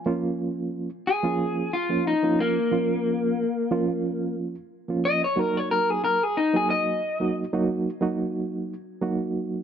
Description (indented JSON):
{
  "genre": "blues",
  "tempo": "90 BPM",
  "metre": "4/4",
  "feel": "swing 55% on 16ths",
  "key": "Bb minor",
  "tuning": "A4 = 439 Hz",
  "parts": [
    { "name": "reed electric piano", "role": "accompaniment", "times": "0.0-9.6 s", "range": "F3 to Gb4", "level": "-26 LUFS", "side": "right 3 dB", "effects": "fast tremolo" },
    { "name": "electric guitar through a small old amp", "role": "melody", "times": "1.1-7.3 s", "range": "Bb3 to Eb5", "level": "-23 LUFS", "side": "left 2 dB", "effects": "none" }
  ],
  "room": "light reverb",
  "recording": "none",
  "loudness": "-23 LUFS",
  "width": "side -8 dB against mid",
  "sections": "0.0-9.6 A section",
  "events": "clean electric guitar solo 0.0-9.6",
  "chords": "0.0 Bbm; 5.4 Ebm"
}